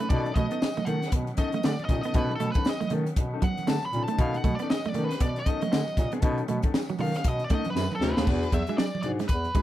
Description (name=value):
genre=funk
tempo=118 BPM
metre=4/4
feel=swing 60% on 16ths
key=B mixolydian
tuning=A4 = 443 Hz
part: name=nasal lead guitar with a parked wah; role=melody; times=0.0-9.6 s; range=A4 to B5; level=-33 LUFS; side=equal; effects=overdrive
part: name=mellow electric guitar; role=accompaniment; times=0.0-9.6 s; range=C#4 to A4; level=-35 LUFS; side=left 8 dB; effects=none
part: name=bright tonewheel organ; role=sustained chords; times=0.0-8.2 s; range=D#3 to C#4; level=-39 LUFS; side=equal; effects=slow rotary speaker
part: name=semi-hollow electric guitar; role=riff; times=0.0-9.6 s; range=F#3 to B3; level=-32 LUFS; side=right 6 dB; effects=none
part: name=warm bass clarinet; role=bass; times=0.1-9.5 s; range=D2 to D#3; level=-30 LUFS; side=equal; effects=none
part: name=crisp fusion drum kit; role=drums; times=0.1-9.6 s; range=crash cymbal, hi-hat, kick drum, snare drum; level=-27 LUFS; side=equal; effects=none
part: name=congas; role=percussion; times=0.1-9.5 s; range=none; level=-36 LUFS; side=right 4 dB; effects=none
part: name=tambourine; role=percussion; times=0.6-8.9 s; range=none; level=-48 LUFS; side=left 5 dB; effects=none
room=studio ambience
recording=none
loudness=-24 LUFS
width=side -13 dB against mid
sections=0.0-8.3 A section; 8.3-9.6 B section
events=lead electric guitar solo 0.0-8.3; drum fill 7.8-8.3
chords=0.0 B9; 8.3 E9